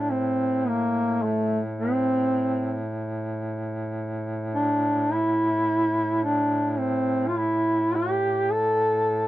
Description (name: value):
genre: caucasian folk, Caucasian lament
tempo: 54 BPM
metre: 3/4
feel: rubato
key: A phrygian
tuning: A4 = 439 Hz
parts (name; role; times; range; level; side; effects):
- mellow duduk; melody; 0.0-9.3 s; A3 to A4; -22 LUFS; equal; none
- clear duduk; drone; 0.0-9.3 s; A2; -30 LUFS; equal; none
room: light reverb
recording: dry, close 1970s-style studio recording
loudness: -22 LUFS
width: side -15 dB against mid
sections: 0.0-9.3 A section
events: none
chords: none